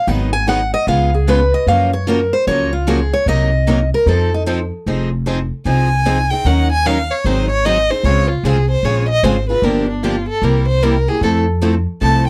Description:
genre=acoustic string swing (jazz manouche)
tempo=151 BPM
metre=4/4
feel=swing 64% on 8ths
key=F minor from 4.9 s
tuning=A4 = 440 Hz
part: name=picked steel-string acoustic guitar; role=melody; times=0.0-4.4 s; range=Eb4 to Ab5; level=-19 LUFS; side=equal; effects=none
part: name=picked steel-string acoustic guitar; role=accompaniment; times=0.1-12.2 s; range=C3 to Bb4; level=-23 LUFS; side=equal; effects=none
part: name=picked steel-string acoustic guitar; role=accompaniment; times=0.1-12.2 s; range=C3 to Bb4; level=-25 LUFS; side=equal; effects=none
part: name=upright bass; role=bass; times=0.1-12.3 s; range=F1 to Gb2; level=-19 LUFS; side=equal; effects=none
part: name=warm violin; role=second line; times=5.7-12.3 s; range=D4 to A5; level=-20 LUFS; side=equal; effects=none
room=light reverb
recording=dry, close 1970s-style studio recording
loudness=-16 LUFS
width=mono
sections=0.0-4.9 A section; 4.9-12.3 A section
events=steel-string acoustic guitar solo 0.0-4.9; violin solo 4.9-12.3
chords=0.1 Abm7; 0.9 Db7; 1.7 Gbmaj7; 3.3 Cm7b5; 4.1 F7; 4.9 Fm7; 6.5 Ebm7; 7.3 Ab7; 8.0 Dbmaj7; 9.6 Gm7; 10.4 C7; 11.2 Fmaj7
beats=| 0.08 0.48 0.88 1.28 | 1.68 2.07 2.47 2.87 | 3.27 3.67 4.07 4.47 | 4.86 5.26 5.66 6.06 | 6.46 6.85 7.25 7.65 | 8.05 8.44 8.84 9.24 | 9.63 10.03 10.43 10.83 | 11.22 11.62 12.02

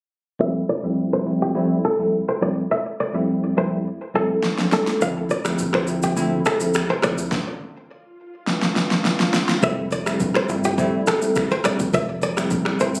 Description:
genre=afrobeats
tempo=104 BPM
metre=4/4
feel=straight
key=F major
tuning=A4 = 440 Hz
part: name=bell-like tine electric piano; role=accompaniment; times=0.4-13.0 s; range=D2 to E4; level=-25 LUFS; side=equal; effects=low-pass filter
part: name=kora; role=riff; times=0.4-12.9 s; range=G4 to F5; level=-25 LUFS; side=equal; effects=low-pass filter, digital delay
part: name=deep house drum kit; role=drums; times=4.4-13.0 s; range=finger snaps, kick drum, rim click, shaker, snare drum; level=-25 LUFS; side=equal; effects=overdrive
part: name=congas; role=percussion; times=5.3-12.7 s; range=none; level=-34 LUFS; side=equal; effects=none
part: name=swell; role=sound effects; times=8.1-9.6 s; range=none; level=-34 LUFS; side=equal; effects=none
part: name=fingered electric bass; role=bass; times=9.6-13.0 s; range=F1 to G1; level=-32 LUFS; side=equal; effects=none
room=moderate studio reverb, RT60 0.6 s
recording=recorded on a phone in the room, studio reverb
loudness=-21 LUFS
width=mono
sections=0.4-9.6 A section; 9.6-13.0 B section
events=filter sweep 0.4-9.6; drum fill 4.4-5.0, 8.5-9.6; swell 8.1-9.6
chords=0.4 Fmaj7; 5.0 Dm7; 7.3 N.C.; 9.6 Fmaj7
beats=| 0.40 0.97 1.55 2.13 | 2.70 3.28 3.86 4.43 | 5.01 5.59 6.17 6.74 | 7.32 7.90 8.47 9.05 | 9.63 10.20 10.78 11.36 | 11.94 12.51

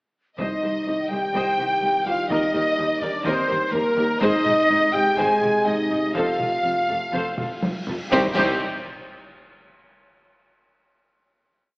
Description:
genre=cinematic, epic orchestral film score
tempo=125 BPM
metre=4/4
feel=straight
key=C minor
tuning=A4 = 442 Hz
part: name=warm symphonic violin section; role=melody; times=0.4-8.6 s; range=G4 to Ab5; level=-29 LUFS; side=equal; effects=none
part: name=silver concert flute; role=second line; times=0.4-8.6 s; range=Bb4 to Ab5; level=-27 LUFS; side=equal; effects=none
part: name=warm symphonic violin section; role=second line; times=0.4-8.6 s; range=Bb4 to Ab5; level=-30 LUFS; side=equal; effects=none
part: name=rich symphonic viola section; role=accompaniment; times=0.4-8.6 s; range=C4 to Eb5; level=-29 LUFS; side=equal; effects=none
part: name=dark French horn section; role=sustained chords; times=0.4-8.3 s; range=Bb3 to C5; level=-27 LUFS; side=equal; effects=none
part: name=mellow trombone section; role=sustained chords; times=0.4-8.3 s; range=C3 to A3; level=-30 LUFS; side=equal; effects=none
part: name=dark trumpet section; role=stabs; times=0.4-8.6 s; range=G4 to Ab5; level=-25 LUFS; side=equal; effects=none
part: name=clear symphonic double bass section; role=bass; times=0.4-8.6 s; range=F1 to Eb2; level=-35 LUFS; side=equal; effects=none
part: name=rich symphonic cello section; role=bass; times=0.4-8.6 s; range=C2 to Ab2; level=-31 LUFS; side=equal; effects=none
part: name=solo taiko drums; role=drums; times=0.4-9.3 s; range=none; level=-32 LUFS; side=equal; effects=none
part: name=cymbal swell, concert snare drum, concert bass drum and clash cymbals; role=percussion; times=4.2-9.3 s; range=none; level=-38 LUFS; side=equal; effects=none
part: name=cymbal swell and impact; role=sound effects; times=7.4-10.0 s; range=none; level=-42 LUFS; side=equal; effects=none
room=wet scoring stage reverb, RT60 1.7 s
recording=AM radio sound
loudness=-19 LUFS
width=side -30 dB against mid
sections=0.4-8.1 theme; 8.1-10.0 final chord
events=drum fill 7.4-8.1; cymbal swell 7.4-8.1; band accent 8.1-8.6; impact 8.1-10.0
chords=0.4 Cm; 2.3 Eb; 4.2 Ab; 6.2 F; 8.1 Cm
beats=| 0.39 0.87 1.35 1.83 | 2.30 2.78 3.25 3.73 | 4.22 4.70 5.18 5.67 | 6.16 6.65 7.14 7.63 | 8.12 8.60 9.08 9.56

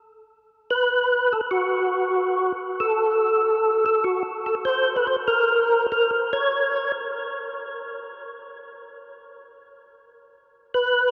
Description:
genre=jazz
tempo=96 BPM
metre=4/4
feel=swing 68% on 8ths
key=unclear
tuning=A4 = 440 Hz
part: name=percussive tonewheel organ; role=solo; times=0.7-6.9, 10.7-11.1 s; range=F#4 to C#5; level=-23 LUFS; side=equal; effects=slow rotary speaker, overdrive, chorus vibrato
room=wet huge ambient reverb, RT60 8.3 s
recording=in a vast, echoing space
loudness=-22 LUFS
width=mono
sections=0.0-11.1 A section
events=none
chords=none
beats=| 0.24 0.87 1.50 2.13 | 2.76 3.39 4.02 4.65 | 5.28 5.91 6.53 7.16 | 7.79 8.42 9.05 9.67 | 10.30 10.93

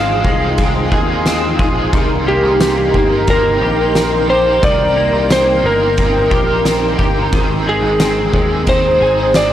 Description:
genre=dream pop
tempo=89 BPM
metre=4/4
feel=straight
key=C minor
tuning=A4 = 441 Hz
part: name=electric slide guitar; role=melody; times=0.0-9.5 s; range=G4 to F5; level=-15 LUFS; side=equal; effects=tape echo
part: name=overdriven electric guitar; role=accompaniment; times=0.0-9.5 s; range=Ab2 to Bb4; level=-22 LUFS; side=right 2 dB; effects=harmonic tremolo, ensemble chorus
part: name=shimmering ambient pad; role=sustained chords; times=0.0-9.5 s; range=Eb4 to C6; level=-21 LUFS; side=equal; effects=chorus, built-in reverb
part: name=electric guitar at the edge of break-up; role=arpeggios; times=0.0-9.5 s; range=Eb3 to Ab4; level=-21 LUFS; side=left 2 dB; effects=ensemble chorus, tape echo
part: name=picked electric bass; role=bass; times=0.0-9.5 s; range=G1 to Eb2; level=-20 LUFS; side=equal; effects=tube saturation
part: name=oversized low-tuned drum kit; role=drums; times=0.2-9.5 s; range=kick drum, ride cymbal, snare drum, tambourine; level=-18 LUFS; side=equal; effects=none
room=light reverb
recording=none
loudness=-11 LUFS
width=side -11 dB against mid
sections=0.0-9.5 A section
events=none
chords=0.0 Fm7/Ab; 1.9 Cm7; 7.3 Ab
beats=0.58 1.26 | 1.93 2.60 3.28 3.95 | 4.63 5.30 5.98 6.65 | 7.32 8.00 8.67 9.35

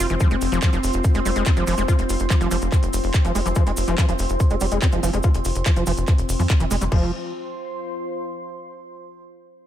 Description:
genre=psychedelic trance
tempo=143 BPM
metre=4/4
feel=straight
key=unclear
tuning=A4 = 440 Hz
part: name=evolving wavetable pad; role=sustained chords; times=0.0-6.9 s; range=C4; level=-31 LUFS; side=right 1 dB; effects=chorus, built-in reverb, sidechain pumping
part: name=screaming distorted acid line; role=riff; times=0.0-7.1 s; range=E3 to F4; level=-26 LUFS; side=moving between left 4 dB and right 5 dB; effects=distortion, chorus, auto-pan, sidechain pumping, ping-pong delay
part: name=tight sequencer bass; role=bass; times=0.0-7.1 s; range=F1 to F2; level=-24 LUFS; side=equal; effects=none
part: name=drum and bass drum kit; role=drums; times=0.0-7.0 s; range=crash cymbal, handclaps, hi-hat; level=-30 LUFS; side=equal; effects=none
part: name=cabasa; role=percussion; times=0.0-6.9 s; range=none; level=-34 LUFS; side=right 2 dB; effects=none
part: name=deep dark ambient pad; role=texture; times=0.0-8.6 s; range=F4 to C6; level=-30 LUFS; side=left 1 dB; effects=chorus, built-in reverb, sidechain pumping
part: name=electronic kick drum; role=drums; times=0.2-7.0 s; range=none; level=-18 LUFS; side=equal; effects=none
room=little or no reverb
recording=none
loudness=-18 LUFS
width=side -11 dB against mid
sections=0.0-6.9 A section; 6.9-8.6 B section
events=filter sweep on acid bass 0.0-6.9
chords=0.0 F5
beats=| 0.20 0.62 1.04 1.46 | 1.88 2.30 2.72 3.14 | 3.56 3.98 4.40 4.82 | 5.24 5.66 6.08 6.50 | 6.92 7.34 7.76 8.18

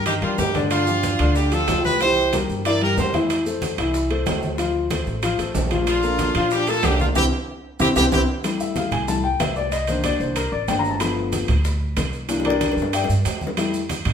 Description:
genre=latin, salsa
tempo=187 BPM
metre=4/4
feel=straight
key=unclear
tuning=A4 = 438 Hz
part: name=clear horn section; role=melody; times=0.0-3.2, 5.9-8.2 s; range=C4 to D5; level=-21 LUFS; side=right 1 dB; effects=none
part: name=upright bass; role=bass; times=0.0-14.1 s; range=G1 to Bb2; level=-25 LUFS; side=right 1 dB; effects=none
part: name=dark grand piano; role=accompaniment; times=0.1-13.8 s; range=D3 to B5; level=-23 LUFS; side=left 3 dB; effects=none
part: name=bongos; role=percussion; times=0.1-14.1 s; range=none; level=-33 LUFS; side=left 3 dB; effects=none
part: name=congas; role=percussion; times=0.1-14.1 s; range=none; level=-31 LUFS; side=equal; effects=none
part: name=maracas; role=percussion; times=0.1-14.1 s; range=none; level=-35 LUFS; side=right 3 dB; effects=none
part: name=timbales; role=percussion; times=0.1-14.1 s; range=none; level=-29 LUFS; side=right 6 dB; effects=none
room=wet stone room reverb, RT60 1.1 s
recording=band playing live in one room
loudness=-18 LUFS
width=side -8 dB against mid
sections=0.0-8.4 A section; 8.4-14.1 B section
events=band accent 7.2-8.4; drum fill 7.6-8.4, 12.3-13.6; grand piano solo 8.4-14.1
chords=0.0 Cm9 (rootless); 0.7 G5; 2.0 C7; 3.3 Fmaj7; 4.6 Dm7; 5.9 Bbmaj7; 7.2 C; 8.4 C69; 9.7 Cm9; 11.0 G7; 12.3 C9; 13.6 Fmaj9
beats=0.06 0.39 | 0.71 1.03 1.36 1.68 | 2.00 2.33 2.65 2.98 | 3.30 3.62 3.94 4.26 | 4.59 4.91 5.23 5.55 | 5.87 6.19 6.51 6.84 | 7.16 7.48 7.80 8.12 | 8.44 8.76 9.08 9.40 | 9.72 10.04 10.36 10.68 | 11.01 11.33 11.65 11.97 | 12.29 12.61 12.93 13.26 | 13.58 13.90

